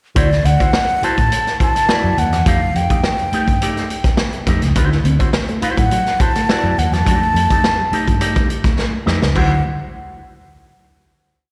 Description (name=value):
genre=funk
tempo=104 BPM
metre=4/4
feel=straight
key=D mixolydian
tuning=A4 = 440 Hz
part: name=breathy mellow concert flute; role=melody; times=0.2-9.6 s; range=D5 to A5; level=-21 LUFS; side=equal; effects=slapback echo
part: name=electric guitar with an envelope filter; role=accompaniment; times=0.2-9.5 s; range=A3 to D5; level=-26 LUFS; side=equal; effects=slapback echo
part: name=vintage muted fingered electric bass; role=bass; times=0.2-9.6 s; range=C#2 to A2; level=-20 LUFS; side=equal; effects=none
part: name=vintage drum kit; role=drums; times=0.2-9.5 s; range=crash cymbal, hi-hat, kick drum, snare drum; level=-20 LUFS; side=equal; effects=none
part: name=mellow electric guitar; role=riff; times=4.8-9.5 s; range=F3 to D4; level=-29 LUFS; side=equal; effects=slapback echo
room=light reverb, small room reverb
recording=live gig heard through the venue's PA, recital hall reverb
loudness=-16 LUFS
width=mono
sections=0.2-9.4 groove; 9.4-11.5 final chord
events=drum fill 8.8-9.4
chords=0.2 D9; 2.5 F9; 4.8 D9; 7.1 F9; 9.4 D9